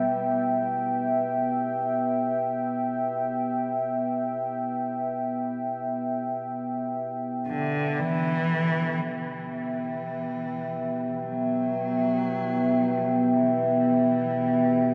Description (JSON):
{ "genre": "dark ambient drone", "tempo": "free time", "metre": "none", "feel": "none", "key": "E minor", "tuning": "A4 = 439 Hz", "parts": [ { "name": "dark analog pad", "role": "sustained chords", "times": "0.0-14.9 s", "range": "B3 to G5", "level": "-27 LUFS", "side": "equal", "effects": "chorus" }, { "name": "rich cello", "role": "melody", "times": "7.5-14.9 s", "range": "D3 to F#3", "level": "-34 LUFS", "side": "equal", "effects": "diffuse ambient delay" } ], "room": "wet cathedral reverb, RT60 5.5 s", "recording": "in a vast, echoing space", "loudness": "-27 LUFS", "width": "mono", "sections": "0.0-9.1 A section; 9.1-14.9 B section", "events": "fade-out on analog synth pad 0.0-9.1", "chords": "0.0 Em" }